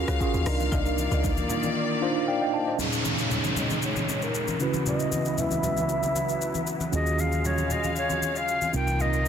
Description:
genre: amapiano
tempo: 116 BPM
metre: 4/4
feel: straight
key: Bb minor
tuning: A4 = 440 Hz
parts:
  - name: mellow tine electric piano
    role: accompaniment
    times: 0.0-9.3 s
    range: Bb2 to A5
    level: -29 LUFS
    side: right 2 dB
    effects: medium stereo tremolo, low-pass filter
  - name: rich studio string section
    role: sustained chords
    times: 0.0-9.3 s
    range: Db2 to F5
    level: -31 LUFS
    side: left 2 dB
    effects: sidechain pumping, low-pass filter
  - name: deep log drum bass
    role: bass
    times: 0.0-1.5 s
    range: C2 to Eb2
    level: -27 LUFS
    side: equal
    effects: none
  - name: marimba with medium mallets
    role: stabs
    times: 0.1-1.2 s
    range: F4 to F5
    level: -37 LUFS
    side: left 5 dB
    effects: ping-pong delay
  - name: afro-pop drum kit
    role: drums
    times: 0.1-9.3 s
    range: hi-hat, kick drum, rim click, shaker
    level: -34 LUFS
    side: left 1 dB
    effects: none
  - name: congas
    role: percussion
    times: 0.3-9.3 s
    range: none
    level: -34 LUFS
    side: left 2 dB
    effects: none
  - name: breathy bright concert flute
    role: melody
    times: 2.8-9.3 s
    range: Bb4 to G5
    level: -29 LUFS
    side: equal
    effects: low-pass filter, ping-pong delay
  - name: downlifter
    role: sound effects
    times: 2.8-6.9 s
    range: none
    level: -31 LUFS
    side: equal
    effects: none
  - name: vintage muted fingered electric bass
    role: bass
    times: 6.9-9.3 s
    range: C2 to Eb2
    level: -28 LUFS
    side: equal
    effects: none
room: light reverb, small room ambience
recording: dense, heavily limited modern master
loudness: -24 LUFS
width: side -8 dB against mid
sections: 0.0-2.8 A section; 2.8-9.3 B section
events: drop 0.0-2.8; drums muted 1.8-2.8; tine electric piano fill 1.8-2.8; filter sweep 2.8-9.3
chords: 0.5 Cm11; 2.8 Bbm7; 4.6 Dbm11; 6.9 Ebm11; 8.7 Cm11

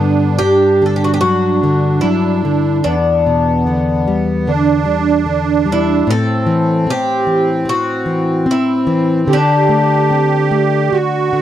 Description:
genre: fado-style ballad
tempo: 74 BPM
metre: 4/4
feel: rubato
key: G major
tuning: A4 = 440 Hz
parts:
  - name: Irish bouzouki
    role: melody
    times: 0.0-11.4 s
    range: B3 to A4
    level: -16 LUFS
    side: left 1 dB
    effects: none
  - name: musette accordion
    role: second line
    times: 0.0-11.4 s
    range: B3 to G4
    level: -17 LUFS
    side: right 6 dB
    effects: none
  - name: nylon-string guitar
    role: accompaniment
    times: 0.0-11.4 s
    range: E2 to C4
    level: -16 LUFS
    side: left 2 dB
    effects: none
room: little or no reverb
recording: dry, close 1970s-style studio recording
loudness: -12 LUFS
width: side -11 dB against mid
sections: 0.0-11.4 A section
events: none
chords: 0.0 Gmaj7(no3); 2.8 Em7; 6.1 Am; 9.3 D7sus4

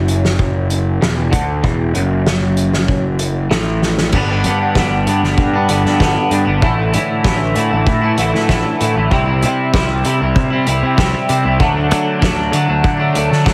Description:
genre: indie rock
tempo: 96 BPM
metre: 4/4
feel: straight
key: unclear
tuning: A4 = 440 Hz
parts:
  - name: twangy electric guitar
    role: riff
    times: 0.0-13.5 s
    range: E2 to E4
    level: -19 LUFS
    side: equal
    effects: double-tracked
  - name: fuzz picked electric bass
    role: bass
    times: 0.0-13.5 s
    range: E1 to D3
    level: -19 LUFS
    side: equal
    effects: overdrive
  - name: loose indie drum kit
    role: drums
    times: 0.1-13.5 s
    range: crash cymbal, hi-hat, kick drum, snare drum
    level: -21 LUFS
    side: equal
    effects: none
room: light reverb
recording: heavily compressed radio sound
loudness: -15 LUFS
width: mono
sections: 0.0-4.1 A section; 4.1-13.5 B section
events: drum fill 3.8-4.1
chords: 0.0 E9sus4; 4.1 G; 6.6 Asus4; 9.1 C; 11.6 D

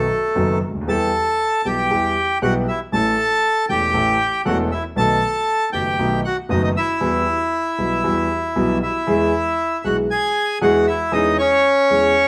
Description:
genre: tango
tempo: 117 BPM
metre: 4/4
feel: rubato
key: E minor, E major from 9.1 s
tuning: A4 = 440 Hz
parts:
  - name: bandoneon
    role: melody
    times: 0.0-12.3 s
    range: A3 to A5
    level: -21 LUFS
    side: equal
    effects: none
  - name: warm concert grand piano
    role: accompaniment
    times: 0.0-12.1 s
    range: E1 to A4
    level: -23 LUFS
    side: equal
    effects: none
room: wet studio reverb, RT60 0.7 s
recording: band playing live in one room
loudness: -19 LUFS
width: mono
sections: 0.0-9.1 A section; 9.1-12.3 B section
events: none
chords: 0.0 B; 0.9 Em; 2.9 A; 5.0 B7; 7.0 Emadd9; 9.1 E; 11.1 C#m/E

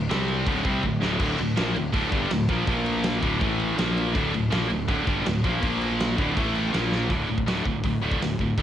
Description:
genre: heavy metal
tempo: 163 BPM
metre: 4/4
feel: straight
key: D minor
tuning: A4 = 440 Hz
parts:
  - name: distorted electric guitar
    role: riff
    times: 0.0-7.1 s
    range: D2 to C4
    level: -30 LUFS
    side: left 1 dB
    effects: distortion, cassette tape
  - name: high-gain distorted guitar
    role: riff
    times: 0.0-8.6 s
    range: D2 to C4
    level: -29 LUFS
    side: left 7 dB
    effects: distortion, cassette tape
  - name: high-gain distorted guitar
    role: riff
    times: 0.0-8.6 s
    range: D2 to C4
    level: -28 LUFS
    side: right 7 dB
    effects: distortion, cassette tape
  - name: fuzz fingered electric bass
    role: bass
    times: 0.0-8.6 s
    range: D1 to C2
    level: -29 LUFS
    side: equal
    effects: overdrive
  - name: big rock drum kit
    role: drums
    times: 0.1-8.6 s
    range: crash cymbal, hi-hat, kick drum, snare drum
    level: -28 LUFS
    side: equal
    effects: cassette tape
room: light reverb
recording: home recording on cassette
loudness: -22 LUFS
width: side -10 dB against mid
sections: 0.0-7.1 A section; 7.1-8.6 B section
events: drum fill 0.8-1.2, 6.9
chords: 0.1 C5; 0.5 Dm; 2.7 Bb5; 3.2 D5; 3.4 A5; 3.8 Bb5; 4.2 Dm; 5.6 Bb5; 6.2 D5; 6.4 A5; 6.7 Bb5; 7.1 D5

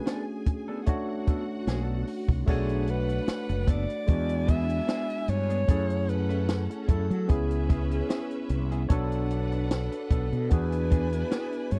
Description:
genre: lush 1970s-style soul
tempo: 75 BPM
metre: 4/4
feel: swing 54% on 16ths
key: B dorian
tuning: A4 = 440 Hz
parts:
  - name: warm alto saxophone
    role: melody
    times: 0.0-11.8 s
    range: G#4 to E5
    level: -36 LUFS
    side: equal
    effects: slapback echo
  - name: clear studio string section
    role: second line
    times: 0.0-11.8 s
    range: C#4 to G#5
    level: -43 LUFS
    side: equal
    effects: none
  - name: barky tine electric piano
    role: accompaniment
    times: 0.0-11.8 s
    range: G#3 to C#5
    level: -35 LUFS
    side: equal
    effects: overdrive
  - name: electric guitar through a small old amp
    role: riff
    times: 0.1-11.8 s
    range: B3 to B4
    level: -40 LUFS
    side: equal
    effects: none
  - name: compact cocktail drum kit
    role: drums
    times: 0.1-11.8 s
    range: crash cymbal, hi-hat, kick drum, snare drum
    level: -27 LUFS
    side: equal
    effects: none
  - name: mellow fretless electric bass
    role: bass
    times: 1.7-11.8 s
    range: F#1 to F#3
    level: -31 LUFS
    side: equal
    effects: none
room: little or no reverb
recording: dry, close 1970s-style studio recording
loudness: -28 LUFS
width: mono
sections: 0.0-2.5 A section; 2.5-11.8 B section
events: none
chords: 0.0 Bm7; 4.1 E7; 5.7 F#m7; 7.3 C#m7; 8.9 Bm7; 10.5 E7

